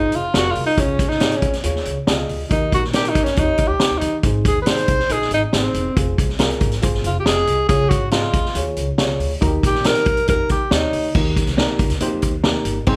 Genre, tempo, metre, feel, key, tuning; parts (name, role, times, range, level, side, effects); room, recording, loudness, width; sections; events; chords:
uptempo 1960s-style soul; 139 BPM; 4/4; straight; A4 = 440 Hz
breathy tenor saxophone; melody; 0.0-11.2 s; C4 to C5; -22 LUFS; equal
reed electric piano; accompaniment; 0.0-13.0 s; Ab2 to Eb5; -27 LUFS; equal
upright bass; bass; 0.0-13.0 s; Fb1 to Eb3; -27 LUFS; equal; tube saturation
vintage drum kit; drums; 0.1-13.0 s; crash cymbal, hi-hat, kick drum, snare drum; -22 LUFS; equal
moderate large studio reverb, RT60 0.8 s; band playing live in one room; -19 LUFS; mono
0.0-11.1 A section; 11.1-12.9 B section
tenor saxophone solo 0.0-11.1
0.0 Fm; 0.8 Db; 2.5 Eb; 4.2 Ab; 6.0 Fm; 7.7 Db; 9.4 Eb